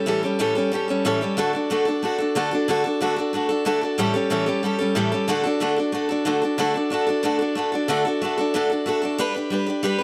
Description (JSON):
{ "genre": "rock", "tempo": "184 BPM", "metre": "4/4", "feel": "straight", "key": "D major", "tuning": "A4 = 441 Hz", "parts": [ { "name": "picked steel-string acoustic guitar", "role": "solo", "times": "0.0-10.0 s", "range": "A2 to B4", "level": "-22 LUFS", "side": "equal", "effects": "tape echo" } ], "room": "light reverb", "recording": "none", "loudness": "-23 LUFS", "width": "mono", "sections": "0.0-6.6 A section; 6.6-10.0 B section", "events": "none", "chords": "0.0 A7; 1.4 D; 4.0 A7; 5.3 D; 9.2 G" }